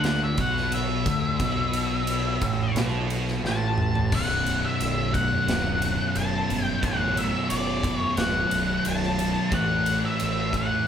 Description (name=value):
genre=stoner and doom metal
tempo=89 BPM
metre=4/4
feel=straight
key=B minor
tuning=A4 = 439 Hz
part: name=octave-fuzz lead guitar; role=melody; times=0.0-10.9 s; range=D5 to A5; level=-27 LUFS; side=left 2 dB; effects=distortion, slapback echo
part: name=thick fuzz guitar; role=riff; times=0.0-10.9 s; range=B1 to A3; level=-31 LUFS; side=left 4 dB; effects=distortion
part: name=thick fuzz guitar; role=riff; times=0.0-10.9 s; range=B1 to A3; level=-30 LUFS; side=right 7 dB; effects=distortion
part: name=thick fuzz guitar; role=riff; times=0.0-10.9 s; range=B1 to A3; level=-32 LUFS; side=equal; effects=distortion
part: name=growling fingered electric bass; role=bass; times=0.0-10.7 s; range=B0 to D2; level=-31 LUFS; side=left 1 dB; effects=overdrive
part: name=big rock drum kit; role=drums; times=0.0-10.7 s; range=crash cymbal, kick drum, ride cymbal, snare drum, toms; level=-30 LUFS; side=equal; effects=none
room=moderate large studio reverb, RT60 1.1 s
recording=band playing live in one room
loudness=-22 LUFS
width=side -8 dB against mid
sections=0.0-4.1 A section; 4.1-10.9 B section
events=lead electric guitar solo 0.0-4.1; drum fill 3.4-4.1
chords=0.0 A5; 4.1 Bm; 9.5 A5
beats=0.05 0.73 | 1.41 2.09 2.77 3.45 | 4.12 4.80 5.48 6.15 | 6.83 7.50 8.18 8.85 | 9.52 10.20 10.87